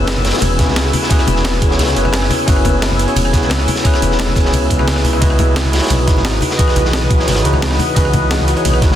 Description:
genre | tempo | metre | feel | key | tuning
liquid drum and bass | 175 BPM | 4/4 | straight | unclear | A4 = 438 Hz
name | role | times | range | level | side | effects
bell-like tine electric piano | accompaniment | 0.0-9.0 s | E3 to D#5 | -20 LUFS | equal | ping-pong delay
glassy FM pad | sustained chords | 0.0-9.0 s | B4 to E6 | -22 LUFS | left 1 dB | ensemble chorus, built-in reverb
kalimba | arpeggios | 0.0-8.6 s | B3 to C#5 | -23 LUFS | left 3 dB | tape echo
swelling detuned saw bass | bass | 0.0-9.0 s | E1 to C#2 | -17 LUFS | equal | tube saturation
breakbeat sampler-style drum kit | drums | 0.1-8.9 s | hi-hat, ride cymbal, rim click, snare drum | -22 LUFS | right 2 dB | none
crunchy breakbeat drum kit | drums | 0.1-9.0 s | hi-hat, snare drum | -24 LUFS | equal | high-pass filter on hats, high-pass filter on snare, high-pass filter on room
congas | percussion | 0.2-9.0 s | none | -23 LUFS | left 2 dB | none
electronic kick drum | drums | 0.6-8.9 s | none | -14 LUFS | equal | none
room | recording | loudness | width
small room ambience | dense, heavily limited modern master | -12 LUFS | side -11 dB against mid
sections
0.0-9.0 A section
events
none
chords
0.0 F#9sus4; 5.2 C#m11

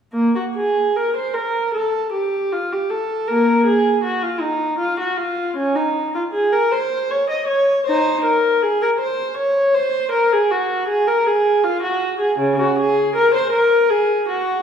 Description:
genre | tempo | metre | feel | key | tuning
classical, baroque-style suite movement for unaccompanied viola | 79 BPM | 4/4 | rubato | Bb minor | A4 = 440 Hz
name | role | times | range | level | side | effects
dark viola | solo | 0.1-14.6 s | Db3 to Eb5 | -16 LUFS | equal | none
room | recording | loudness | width
wet recital hall reverb, RT60 1.6 s | heard from further back in the room | -16 LUFS | side -7 dB against mid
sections
0.1-14.6 A section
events
none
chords
none

